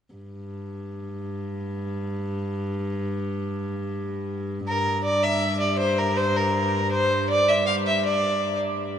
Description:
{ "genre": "medieval dance", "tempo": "106 BPM (dotted quarters)", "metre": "6/8", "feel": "straight", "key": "G dorian", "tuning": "A4 = 442 Hz", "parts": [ { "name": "rich viola da gamba", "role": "drone", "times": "0.1-9.0 s", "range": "G2", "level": "-28 LUFS", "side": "equal", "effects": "none" }, { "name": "rich fiddle", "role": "melody", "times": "4.7-8.6 s", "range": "Bb4 to F5", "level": "-21 LUFS", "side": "equal", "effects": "none" } ], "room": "wet cathedral reverb, RT60 5.8 s", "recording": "dark, warm production", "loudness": "-22 LUFS", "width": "side -8 dB against mid", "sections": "0.1-4.7 A section; 4.7-9.0 B section", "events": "none", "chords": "none", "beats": "| 0.15 0.71 | 1.28 1.85 | 2.41 2.98 | 3.54 4.11 | 4.67 5.24 | 5.80 6.37 | 6.93 7.50 | 8.06 8.62" }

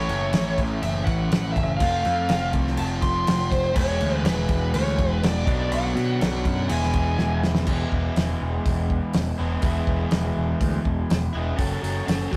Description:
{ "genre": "classic rock", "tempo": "122 BPM", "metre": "4/4", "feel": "straight", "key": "unclear", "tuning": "A4 = 441 Hz", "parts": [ { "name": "bluesy overdriven lead guitar", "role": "melody", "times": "0.0-7.4 s", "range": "B4 to C6", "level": "-30 LUFS", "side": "equal", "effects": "distortion" }, { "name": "crunchy overdriven guitar", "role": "riff", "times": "0.0-12.4 s", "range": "A2 to A4", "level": "-29 LUFS", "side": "equal", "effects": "none" }, { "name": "growling picked electric bass", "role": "bass", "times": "0.0-12.4 s", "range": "E1 to B2", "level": "-28 LUFS", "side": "equal", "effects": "overdrive" }, { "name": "damped 70s drum kit", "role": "drums", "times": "0.1-12.4 s", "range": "crash cymbal, hi-hat, kick drum, snare drum", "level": "-28 LUFS", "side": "equal", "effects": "none" } ], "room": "moderate studio reverb, RT60 0.5 s", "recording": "rough rehearsal-room recording", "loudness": "-23 LUFS", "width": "mono", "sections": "0.0-7.7 A section; 7.7-11.6 B section", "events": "drum fill 7.2-7.7", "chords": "0.0 A; 1.8 F; 3.8 E; 5.5 Bm; 6.7 E; 11.6 F#m", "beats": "0.34 0.83 1.32 | 1.81 2.30 2.79 3.27 | 3.76 4.25 4.74 5.23 | 5.72 6.21 6.70 7.18 | 7.67 8.16 8.65 9.14 | 9.63 10.12 10.62 11.11 | 11.60 12.09" }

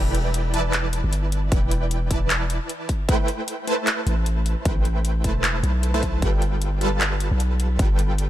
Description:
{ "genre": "future bass", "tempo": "153 BPM", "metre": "4/4", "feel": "swing 56% on 16ths, half-time", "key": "unclear", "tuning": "A4 = 440 Hz", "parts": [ { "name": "supersaw stab", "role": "riff", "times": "0.0-8.3 s", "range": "E3 to A5", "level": "-27 LUFS", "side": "right 1 dB", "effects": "sidechain pumping, dub echo" }, { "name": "long sustained 808-style bass", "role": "bass", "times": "0.0-8.3 s", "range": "E1 to B1", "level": "-22 LUFS", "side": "equal", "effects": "sidechain pumping" }, { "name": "big-room dance drum kit", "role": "drums", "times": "0.1-8.3 s", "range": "handclaps, hi-hat", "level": "-27 LUFS", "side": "equal", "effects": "none" }, { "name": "electronic kick drum", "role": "drums", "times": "1.5-7.9 s", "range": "none", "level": "-22 LUFS", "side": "equal", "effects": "none" } ], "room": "little or no reverb", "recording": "none", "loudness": "-20 LUFS", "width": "side -13 dB against mid", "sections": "0.0-8.3 A section", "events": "none", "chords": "0.0 Em7; 2.9 Am9; 6.2 G9", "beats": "0.34 0.73 1.13 | 1.52 1.91 2.30 2.69 | 3.09 3.48 3.87 4.26 | 4.66 5.05 5.44 5.83 | 6.22 6.62 7.01 7.40 | 7.79 8.19" }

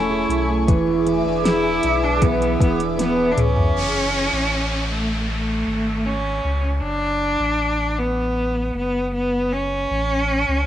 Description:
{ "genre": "pop ballad", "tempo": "78 BPM", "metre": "4/4", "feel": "straight", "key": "F# minor", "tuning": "A4 = 443 Hz", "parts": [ { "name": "bright cello", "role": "melody", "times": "0.0-10.7 s", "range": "A3 to E4", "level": "-21 LUFS", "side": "equal", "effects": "cassette tape" }, { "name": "warm concert grand piano", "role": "accompaniment", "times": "0.0-3.8 s", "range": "E3 to A3", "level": "-26 LUFS", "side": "left 9 dB", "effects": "cassette tape" }, { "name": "airy breathy pad", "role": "sustained chords", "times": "0.0-3.7 s", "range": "A3 to D6", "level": "-25 LUFS", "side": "left 2 dB", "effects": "chorus, phaser, cassette tape" }, { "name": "fingerpicked steel-string acoustic guitar", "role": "arpeggios", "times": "0.0-4.3 s", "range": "E3 to G#4", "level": "-24 LUFS", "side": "right 8 dB", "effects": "cassette tape, analog delay" }, { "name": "warm sub bass", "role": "bass", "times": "0.0-10.7 s", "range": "E1 to C#2", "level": "-26 LUFS", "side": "equal", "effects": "none" }, { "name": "smooth R&B drum kit", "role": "drums", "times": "0.3-3.7 s", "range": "hi-hat, kick drum, snare drum, toms", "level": "-20 LUFS", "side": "equal", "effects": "overdrive, cassette tape" }, { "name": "downlifter", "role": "sound effects", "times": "3.8-9.9 s", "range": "none", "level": "-30 LUFS", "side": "equal", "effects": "none" } ], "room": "light reverb", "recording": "home recording on cassette", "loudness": "-18 LUFS", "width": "side -11 dB against mid", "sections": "0.0-3.8 A section; 3.8-10.7 B section", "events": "drum fill 3.0-3.8", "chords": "0.0 Amaj7; 0.7 E7; 3.8 F#m; 6.8 D/F#; 9.9 A", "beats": "| 0.68 1.45 2.22 2.99 | 3.76 4.53 5.29 6.06 | 6.83 7.60 8.37 9.14 | 9.91" }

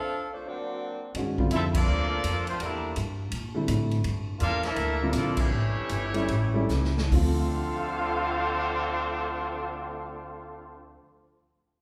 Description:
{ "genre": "jazz, big band swing", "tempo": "141-166 BPM", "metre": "4/4", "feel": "swing 64% on 8ths", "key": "D minor", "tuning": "A4 = 437 Hz", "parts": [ { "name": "mellow saxophone section", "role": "melody", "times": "0.0-1.0 s", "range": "A3 to F5", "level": "-36 LUFS", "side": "equal", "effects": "none" }, { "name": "brilliant trombone section", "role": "second line", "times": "0.5-10.9 s", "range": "D3 to F4", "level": "-36 LUFS", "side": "equal", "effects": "none" }, { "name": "upright bass", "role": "bass", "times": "1.1-11.0 s", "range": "G1 to Bb2", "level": "-32 LUFS", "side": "equal", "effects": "none" }, { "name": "swinging big-band drum kit", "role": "drums", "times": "1.1-7.2 s", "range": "crash cymbal, hi-hat, kick drum, ride cymbal, snare drum", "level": "-35 LUFS", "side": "equal", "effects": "none" }, { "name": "warm baby grand piano", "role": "accompaniment", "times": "1.2-11.0 s", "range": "D2 to F#4", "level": "-33 LUFS", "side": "equal", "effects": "none" }, { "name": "clear trumpet section", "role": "melody", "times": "1.5-11.0 s", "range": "G3 to F5", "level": "-34 LUFS", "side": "equal", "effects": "none" } ], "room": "wet recital hall reverb, RT60 1.7 s", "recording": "recorded in a church or concert hall", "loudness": "-28 LUFS", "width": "mono", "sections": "0.0-1.2 A section; 1.2-7.1 B section; 7.1-10.5 C section", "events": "stop 0.0-1.2; band accent 1.7, 5.3; slowing down 4.0-7.1; drum fill 6.7-7.1", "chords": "0.4 Daug7; 1.2 Gm9; 2.6 Em7b5; 4.0 Gm9; 5.5 A7; 7.1 Dm7", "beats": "0.07 0.43 0.79 | 1.15 1.51 1.88 2.24 | 2.60 2.96 3.32 3.68 | 4.04 4.40 4.77 5.14 | 5.51 5.90 6.29 6.70 | 7.11 7.54 7.96 8.39 | 8.81 9.24 9.66 10.09" }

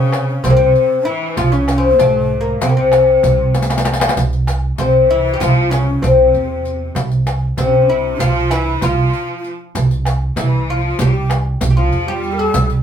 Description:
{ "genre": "Turkish makam ensemble", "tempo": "193 BPM (eighths)", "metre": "9/8", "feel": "straight", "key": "C makam hicaz", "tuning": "A4 = 438 Hz", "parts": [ { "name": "oud", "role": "melody", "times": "0.0-12.7 s", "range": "A3-40c to A4-40c", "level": "-15 LUFS", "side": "left 3 dB", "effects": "none" }, { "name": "breathy low ney", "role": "second line", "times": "0.0-12.7 s", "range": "A3-47c to Bb4", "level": "-24 LUFS", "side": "left 2 dB", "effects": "none" }, { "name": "clear chamber cello section", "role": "second line", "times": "0.0-12.7 s", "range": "A2-40c to G3", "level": "-24 LUFS", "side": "right 1 dB", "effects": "none" }, { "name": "upright bass", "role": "bass", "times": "0.0-12.8 s", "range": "C2 to C3", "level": "-18 LUFS", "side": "right 1 dB", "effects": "none" }, { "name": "darbuka", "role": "percussion", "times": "0.1-12.8 s", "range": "none", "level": "-20 LUFS", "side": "right 4 dB", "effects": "none" }, { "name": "riq", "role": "percussion", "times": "0.1-12.8 s", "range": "none", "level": "-22 LUFS", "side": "left 2 dB", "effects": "none" } ], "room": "moderate studio reverb, RT60 0.5 s", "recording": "band playing live in one room", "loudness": "-12 LUFS", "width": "side -8 dB against mid", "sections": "0.0-4.2 A section; 4.2-12.8 B section", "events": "drum fill 3.5-4.2", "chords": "none", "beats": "0.14 0.45 0.76 1.07 | 1.38 1.69 2.00 2.31 2.62 2.93 3.24 3.55 3.86 | 4.17 4.48 4.79 5.10 5.41 5.72 6.03 6.34 6.65 | 6.96 7.27 7.58 7.89 8.20 8.51 8.82 9.13 9.44 | 9.75 10.06 10.37 10.68 10.99 11.30 11.61 11.92 12.23 | 12.54" }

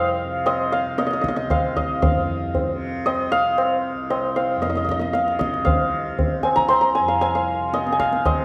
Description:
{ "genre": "indian classical, Hindustani", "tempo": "115 BPM", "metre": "7/4", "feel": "straight", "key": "C raga malkauns", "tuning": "A4 = 440 Hz", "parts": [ { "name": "santur", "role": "melody", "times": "0.0-8.4 s", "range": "Eb5 to C6", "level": "-23 LUFS", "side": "equal", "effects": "none" }, { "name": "tanpura", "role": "drone", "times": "0.0-8.4 s", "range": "C2 to C3", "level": "-32 LUFS", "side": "equal", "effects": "none" }, { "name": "tabla", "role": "percussion", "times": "0.5-8.4 s", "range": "none", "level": "-26 LUFS", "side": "equal", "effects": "none" } ], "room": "wet recital hall reverb, RT60 1.5 s", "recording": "none", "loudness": "-21 LUFS", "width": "mono", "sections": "0.0-8.4 A section", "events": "none", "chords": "none", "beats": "0.46 0.98 1.50 | 2.03 2.55 3.07 3.59 4.11 4.63 5.15 | 5.67 6.19 6.70 7.22 7.74 8.25" }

